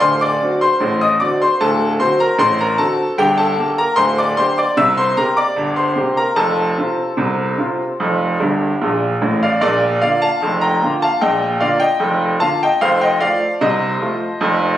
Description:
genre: ragtime piano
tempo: 75 BPM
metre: 2/4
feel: straight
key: Bb major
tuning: A4 = 440 Hz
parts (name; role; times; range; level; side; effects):
- bright upright piano; solo; 0.0-14.8 s; D1 to E6; -14 LUFS; equal; none
room: moderate studio reverb, RT60 0.7 s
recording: recorded on a phone in the room, studio reverb, compression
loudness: -14 LUFS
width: side -12 dB against mid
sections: 0.0-9.6 A section; 9.6-14.8 B section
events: upright piano fill 8.4-9.6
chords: 0.0 D7; 3.2 Gm; 4.8 C7; 6.4 F; 9.6 Bb; 12.8 F7

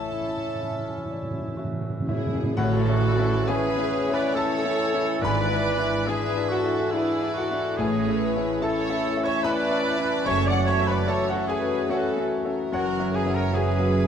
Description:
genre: classical, romantic movement for piano and orchestra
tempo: 58-76 BPM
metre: 3/4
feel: rubato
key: A major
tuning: A4 = 440 Hz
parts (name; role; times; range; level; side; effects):
- clear concert grand piano; melody; 0.0-14.1 s; F#2 to D6; -28 LUFS; left 3 dB; none
- warm symphonic violin section; melody; 0.0-14.1 s; A4 to A5; -37 LUFS; left 1 dB; none
- mellow clarinet; second line; 0.0-14.1 s; C#4 to D5; -34 LUFS; left 1 dB; none
- mellow hollow large flute ensemble; second line; 0.0-14.1 s; G#4 to F#5; -33 LUFS; left 1 dB; none
- mellow oboe; second line; 0.0-14.1 s; E4 to E5; -34 LUFS; right 2 dB; none
- rich studio violin section; second line; 0.0-14.1 s; G#4 to F#5; -33 LUFS; left 1 dB; none
- mellow bassoon; accompaniment; 0.0-2.2 s; C#4; -37 LUFS; equal; none
- mellow French horn section; sustained chords; 0.0-14.1 s; C#4 to F#4; -31 LUFS; left 4 dB; none
- dark symphonic double bass section; bass; 0.0-14.1 s; F#1 to A1; -28 LUFS; right 4 dB; none
- warm symphonic cello section; bass; 0.0-14.1 s; F#2 to A2; -32 LUFS; right 3 dB; none
- timpani; percussion; 0.0-2.5 s; A2; -31 LUFS; right 2 dB; none
- dark symphonic viola section; accompaniment; 0.6-14.1 s; C#4 to D5; -34 LUFS; right 2 dB; none
- warm trombone section; sustained chords; 2.6-14.1 s; E3 to A3; -35 LUFS; right 8 dB; none
- tam-tam; percussion; 2.6-6.0 s; none; -37 LUFS; left 2 dB; none
room: light reverb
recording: close, detailed microphones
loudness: -22 LUFS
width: side -8 dB against mid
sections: 0.0-2.6 A section; 2.6-14.1 A section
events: timpani fill 0.0-2.6; band accent 2.6-3.5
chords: 0.0 A; 5.2 E7/G#; 7.8 A; 10.3 F#m7; 12.7 F#7

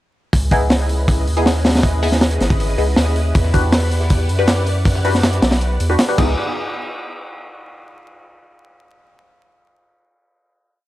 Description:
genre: drum and bass, jungle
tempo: 159 BPM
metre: 4/4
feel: straight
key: unclear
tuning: A4 = 440 Hz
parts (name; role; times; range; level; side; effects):
- soft string machine; sustained chords; 0.4-6.3 s; C#4 to F#5; -26 LUFS; equal; phaser, ensemble chorus, vintage 12-bit sampler grit
- soft dub sub bass; bass; 0.3-6.4 s; G#1 to F#2; -18 LUFS; equal; none
- crunchy breakbeat drum kit; drums; 0.3-6.3 s; crash cymbal, hi-hat, kick drum, snare drum; -18 LUFS; equal; none
- filtered dub chord stab; stabs; 0.5-6.3 s; B3 to B4; -22 LUFS; left 2 dB; phaser, wide subtle chorus, dub echo
- dusty soul sampler-style drum kit; drums; 3.4-6.1 s; hi-hat, snare drum; -28 LUFS; right 1 dB; overdrive, high-pass filter on hats, high-pass filter on snare
room: light reverb, small room ambience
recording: dry, gritty hardware recording, vinyl crackle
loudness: -14 LUFS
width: side -15 dB against mid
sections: 0.3-6.4 drop; 6.4-7.9 final hit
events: drop 0.3-6.4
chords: 0.3 C#m9; 3.3 Em9; 6.2 C#m9; 6.4 N.C.

